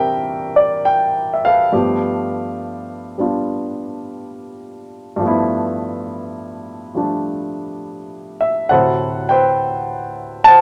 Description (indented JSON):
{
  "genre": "solo jazz",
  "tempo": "69 BPM",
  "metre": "4/4",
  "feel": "swing 68% on 8ths",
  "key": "G mixolydian",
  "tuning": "A4 = 438 Hz",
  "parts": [
    { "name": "warm concert grand piano", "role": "solo", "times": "0.0-10.6 s", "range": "C2 to A5", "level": "-18 LUFS", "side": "equal", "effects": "none" }
  ],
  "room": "moderate large studio reverb, RT60 0.8 s",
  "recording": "none",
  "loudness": "-18 LUFS",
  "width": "mono",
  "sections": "0.0-10.6 A section",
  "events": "none",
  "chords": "0.0 C13; 1.7 G13; 8.7 D13"
}